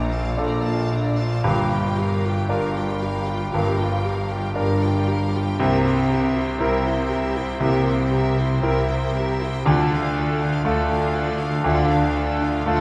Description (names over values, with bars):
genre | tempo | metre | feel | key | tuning
classical, romantic movement for piano and orchestra | 56-62 BPM | 4/4 | rubato | unclear | A4 = 442 Hz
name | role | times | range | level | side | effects
clear concert grand piano | melody | 0.0-12.8 s | G1 to Bb4 | -24 LUFS | equal | none
clear studio violin section | melody | 0.0-12.8 s | D5 to Bb5 | -38 LUFS | equal | none
rich studio violin section | second line | 0.0-12.8 s | F4 to F5 | -35 LUFS | equal | none
rich studio viola section | accompaniment | 0.0-12.8 s | D4 to G4 | -33 LUFS | equal | none
rich studio cello section | bass | 0.0-12.8 s | G2 to D3 | -30 LUFS | equal | none
rich studio double bass section | bass | 0.0-12.8 s | G1 to D2 | -31 LUFS | equal | none
warm French horn section | sustained chords | 1.4-12.0 s | A3 to F4 | -33 LUFS | equal | none
room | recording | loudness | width
wet scoring stage reverb, RT60 1.9 s | heard from further back in the room | -22 LUFS | mono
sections
0.0-12.8 A section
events
none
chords
0.0 Bbmaj7; 1.4 Gm7; 5.6 C7; 9.7 Dm